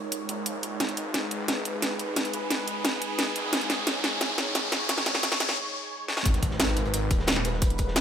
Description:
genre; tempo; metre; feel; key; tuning
dark technical drum and bass; 176 BPM; 4/4; straight; G# minor; A4 = 440 Hz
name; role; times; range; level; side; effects
sweeping resonant pad; sustained chords; 0.0-8.0 s; G#3 to C#5; -33 LUFS; right 1 dB; wide subtle chorus, sidechain pumping
wide detuned saw bass; bass; 0.0-8.0 s; D#1 to A#1; -33 LUFS; equal; chorus, overdrive, sidechain pumping, high-pass filter
riser and impact; sound effects; 0.0-7.6 s; none; -33 LUFS; equal; none
drum and bass drum kit; drums; 0.1-8.0 s; hi-hat, snare drum; -27 LUFS; equal; overdrive, studio reverb
crunchy breakbeat drum kit; drums; 6.3-8.0 s; hi-hat, snare drum; -37 LUFS; equal; high-pass filter on hats, studio reverb, high-pass filter on snare, high-pass filter on room
electronic kick drum; drums; 6.3-7.9 s; none; -25 LUFS; equal; studio reverb
room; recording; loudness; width
light reverb, studio reverb; high-pass filter; -24 LUFS; side -8 dB against mid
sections
0.0-6.3 A section; 6.3-8.0 B section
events
build-up 0.0-6.3; riser 0.0-5.6; filter sweep 0.0-6.3; drum fill 0.8-5.6, 6.1; break 5.6-6.3; drop 6.3-8.0; impact 6.3-7.6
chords
0.0 G#madd9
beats
0.12 0.46 | 0.80 1.14 1.48 1.82 | 2.16 2.50 2.85 3.19 | 3.53 3.87 4.21 4.55 | 4.89 5.23 5.57 5.91 | 6.25 6.60 6.94 7.28 | 7.62 7.96

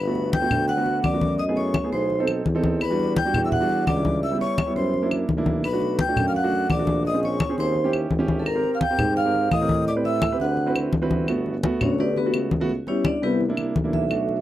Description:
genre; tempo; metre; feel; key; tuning
Afro-Cuban jazz; 170 BPM; 4/4; straight; G major; A4 = 440 Hz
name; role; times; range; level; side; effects
vibraphone with medium mallets; melody; 0.0-14.4 s; B3 to G5; -25 LUFS; equal; none
breathy bright jazz flute; second line; 0.0-10.7 s; A5 to G6; -30 LUFS; left 7 dB; none
warm tuba; bass; 0.0-14.4 s; G1 to A2; -26 LUFS; equal; none
warm grand piano; accompaniment; 0.1-14.4 s; G3 to B4; -27 LUFS; right 3 dB; none
congas; percussion; 0.2-14.4 s; none; -25 LUFS; left 2 dB; none
claves; percussion; 0.5-14.3 s; none; -32 LUFS; left 2 dB; none
room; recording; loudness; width
little or no reverb; dry, close 1970s-style studio recording; -20 LUFS; side -13 dB against mid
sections
0.0-11.3 A section; 11.3-14.4 B section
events
vibraphone solo 11.3-14.4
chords
0.0 Gmaj7; 1.4 F#m11; 2.1 B7b9; 2.8 Em9; 4.2 C#m7b5; 4.9 F#aug7; 5.6 Bm7; 7.0 Bbm7; 7.8 Eb7b9; 8.5 Abmaj9; 9.9 Am9; 10.6 D13; 11.3 Gmaj7; 12.7 C#m7b5; 13.4 C9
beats
0.33 0.69 1.04 | 1.40 1.75 2.10 2.46 | 2.81 3.16 3.52 3.87 | 4.22 4.58 4.93 5.29 | 5.64 5.99 6.34 6.70 | 7.05 7.40 7.76 8.11 | 8.46 8.81 9.17 9.52 | 9.87 10.23 10.58 10.93 | 11.29 11.64 11.99 12.34 | 12.70 13.05 13.40 13.76 | 14.11

